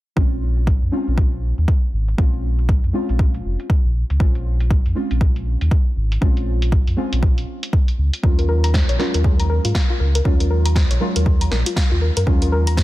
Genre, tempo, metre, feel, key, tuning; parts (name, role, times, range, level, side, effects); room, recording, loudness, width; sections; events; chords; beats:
deep house; 119 BPM; 4/4; swing 60% on 16ths; Bb minor; A4 = 443 Hz
deep mellow chord stab; stabs; 0.2-12.8 s; Gb3 to F4; -26 LUFS; equal; lush chorus, sidechain pumping, digital delay
sub bass with octave; bass; 0.2-12.8 s; F1 to Ab2; -19 LUFS; equal; sidechain pumping
electronic kick drum; drums; 0.2-12.8 s; -17 LUFS; equal; overdrive
punchy analog drum machine; drums; 0.3-12.8 s; hi-hat, snare drum; -27 LUFS; equal; overdrive, low-pass filter on hats, low-pass filter on snare, low-pass filter on room
soft round pluck; arpeggios; 8.2-12.8 s; F4 to Bb5; -26 LUFS; left 3 dB; chorus, sidechain pumping, digital delay
digital ambience; dense, heavily limited modern master; -16 LUFS; side -17 dB against mid
0.2-12.8 A section
filter sweep on drum 0.2-12.8; filter sweep on sub bass 0.2-12.8; filter sweep on synth stab 0.2-12.8
0.2 Bbm9; 8.2 Ebm11
| 0.17 0.67 1.18 1.68 | 2.18 2.69 3.19 3.70 | 4.20 4.71 5.21 5.71 | 6.22 6.72 7.23 7.73 | 8.23 8.74 9.24 9.75 | 10.25 10.76 11.26 11.76 | 12.27 12.77